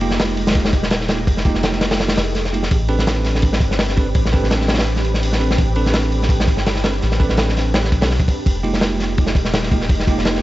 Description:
drum and bass, jungle; 167 BPM; 4/4; swing 54% on 16ths; A4 = 440 Hz
soft string machine; sustained chords; 0.0-10.4 s; Ab3 to B4; -27 LUFS; left 1 dB; phaser, ensemble chorus, vintage 12-bit sampler grit
bell-like tine electric piano; stabs; 0.0-10.4 s; Ab3 to B4; -24 LUFS; right 3 dB; dub echo
soft dub sub bass; bass; 0.0-10.4 s; Eb1 to B1; -21 LUFS; equal
crunchy breakbeat drum kit; drums; 0.0-10.4 s; hi-hat, kick drum, snare drum; -18 LUFS; equal
swell; sound effects; 2.2-2.7 s; -31 LUFS; right 2 dB
little or no reverb; vinyl crackle, nothing above 7.7 kHz; -15 LUFS; side -16 dB against mid
0.0-10.4 A section
swell 2.2-2.7
0.0 Fm11; 2.7 Am11; 8.5 Fm11
0.20 0.56 0.92 | 1.27 1.63 1.99 2.35 | 2.71 3.07 3.43 3.79 | 4.15 4.51 4.87 5.23 | 5.58 5.94 6.30 6.66 | 7.02 7.38 7.74 8.10 | 8.46 8.82 9.18 9.54 | 9.90 10.26

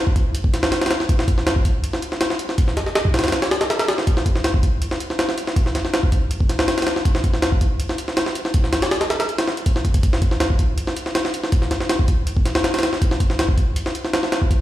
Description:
drum and bass; 161 BPM; 4/4; straight
jungle sampler-style drum kit; drums; 0.1-14.6 s; hi-hat, kick drum, snare drum; -17 LUFS; equal; overdrive, studio reverb
light reverb; played on a big sound system in a bare room, large studio reverb; -17 LUFS; side -14 dB against mid
0.0-14.6 A section
0.34 0.72 | 1.09 1.46 1.83 2.21 | 2.58 2.95 3.33 3.70 | 4.07 4.44 4.82 5.19 | 5.56 5.93 6.31 6.68 | 7.05 7.42 7.80 8.17 | 8.54 8.92 9.29 9.66 | 10.03 10.41 10.78 11.15 | 11.52 11.90 12.27 12.64 | 13.02 13.39 13.76 14.13 | 14.51

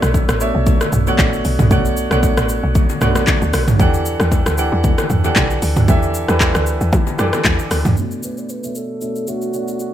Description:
amapiano; 115 BPM; 4/4; swing 55% on 16ths; B minor; A4 = 443 Hz
warm grand piano; accompaniment; 0.0-9.9 s; B2 to F#5; -20 LUFS; right 1 dB; low-pass filter
woody log drum bass; bass; 0.0-8.0 s; A1 to E3; -18 LUFS; equal
deep house drum kit; drums; 0.0-9.9 s; handclaps, hi-hat, kick drum, rim click, shaker, toms; -16 LUFS; equal; overdrive
bongos and congas; percussion; 0.1-8.0 s; -28 LUFS; left 7 dB
breathy alto saxophone; melody; 8.2-9.9 s; F#4 to D5; -27 LUFS; right 1 dB; low-pass filter
little or no reverb; -14 LUFS; side -11 dB against mid
0.0-8.0 A section; 8.0-9.9 B section
drop 0.0-8.0; filter sweep 8.0-9.9
0.0 Bm11; 3.8 Em11; 8.0 Bm11
0.14 0.67 1.19 | 1.71 2.23 2.75 3.27 | 3.80 4.32 4.84 5.36 | 5.88 6.40 6.93 7.45 | 7.97 8.49 9.01 9.54

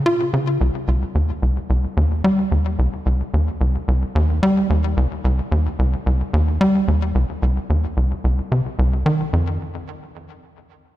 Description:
ambient; 110 BPM; 4/4; straight; A4 = 440 Hz
tight sequencer bass; solo; 0.0-9.6 s; C2 to F4; -17 LUFS; equal; ping-pong delay
wet concert hall reverb, RT60 2.3 s; -17 LUFS; side -14 dB against mid
0.0-9.3 A section; 9.3-11.0 B section
0.06 | 0.61 1.15 1.70 2.24 | 2.79 3.33 3.88 4.42 | 4.97 5.51 6.06 6.61 | 7.15 7.70 8.24 8.79 | 9.33

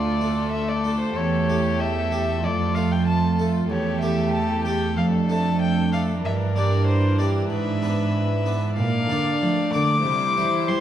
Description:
classical, baroque-style concerto movement with solo episodes; 95 BPM; 4/4; straight; D minor; A4 = 440 Hz
dark violin; melody; 0.0-10.8 s; C5 to D6; -26 LUFS; left 3 dB
rich chamber violin section; melody; 0.0-10.8 s; A4 to D5; -33 LUFS; left 6 dB
rich chamber violin section; second line; 0.0-10.8 s; D4 to G4; -30 LUFS; left 1 dB
harpsichord; accompaniment; 0.0-10.8 s; D2 to D5; -27 LUFS; right 2 dB
warm studio viola section; accompaniment; 0.0-10.8 s; E3 to Bb3; -28 LUFS; equal
warm chamber cello section; bass; 0.0-10.8 s; D2 to G3; -24 LUFS; right 3 dB
moderate scoring stage reverb, RT60 2.2 s; dark, warm production; -20 LUFS; side -10 dB against mid
0.0-10.8 A section
0.0 Dm; 1.2 A7/E; 2.4 F6; 3.7 A5/E; 5.0 Dm/F; 6.2 Em7b5/G; 7.5 E7/G#; 8.8 Bb; 10.1 C
0.53 | 1.17 1.80 2.44 3.07 | 3.70 4.34 4.97 5.60 | 6.24 6.87 7.50 8.14 | 8.77 9.41 10.05 10.69

